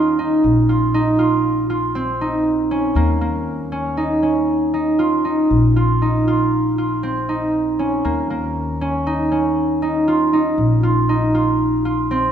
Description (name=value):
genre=contemporary instrumental, chamber music in an uneven meter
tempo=118 BPM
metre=5/4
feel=straight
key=Bb minor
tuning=A4 = 440 Hz
part: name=concert harp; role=arpeggios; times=0.0-12.3 s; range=Bb3 to F4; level=-17 LUFS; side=right 1 dB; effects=none
part: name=upright bass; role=bass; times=0.0-12.3 s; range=Bb1 to Eb2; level=-22 LUFS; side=left 1 dB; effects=none
room=moderate concert hall reverb, RT60 1.7 s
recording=none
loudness=-16 LUFS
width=side -9 dB against mid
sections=0.0-12.3 A section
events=none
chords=0.4 Bbmadd9; 3.0 Eb5; 5.5 Bbmadd9; 8.1 Eb5; 10.6 Bbmadd9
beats=| 0.44 0.94 1.45 1.95 2.45 | 2.96 3.46 3.97 4.48 4.99 | 5.50 6.02 6.53 7.04 7.54 | 8.05 8.56 9.07 9.57 10.07 | 10.58 11.08 11.59 12.10